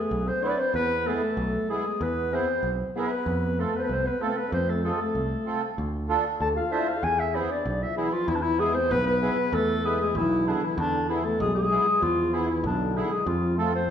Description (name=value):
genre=klezmer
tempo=96 BPM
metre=2/4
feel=straight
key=E phrygian dominant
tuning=A4 = 440 Hz
part: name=dark clarinet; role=melody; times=0.0-13.9 s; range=D4 to A5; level=-26 LUFS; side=left 1 dB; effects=none
part: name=trombone with bucket mute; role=second line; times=0.0-13.9 s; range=D3 to A4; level=-31 LUFS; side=left 3 dB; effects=none
part: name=picked electric bass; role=bass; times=0.1-13.9 s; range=B1 to F2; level=-30 LUFS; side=equal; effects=none
part: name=accordion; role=accompaniment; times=0.4-13.7 s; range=B3 to C5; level=-32 LUFS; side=right 5 dB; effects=light tremolo tuning
room=wet recital hall reverb, RT60 1.6 s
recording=recorded in a church or concert hall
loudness=-23 LUFS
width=side -8 dB against mid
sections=0.0-8.3 A section; 8.3-13.9 B section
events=clarinet solo 0.0-8.3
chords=0.0 E; 3.3 F; 5.8 Dm; 7.0 E; 13.3 F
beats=0.10 | 0.74 1.37 | 2.00 2.64 | 3.27 3.90 | 4.53 5.16 | 5.78 6.41 | 7.04 7.66 | 8.29 8.91 | 9.53 10.15 | 10.78 11.40 | 12.02 12.64 | 13.27 13.89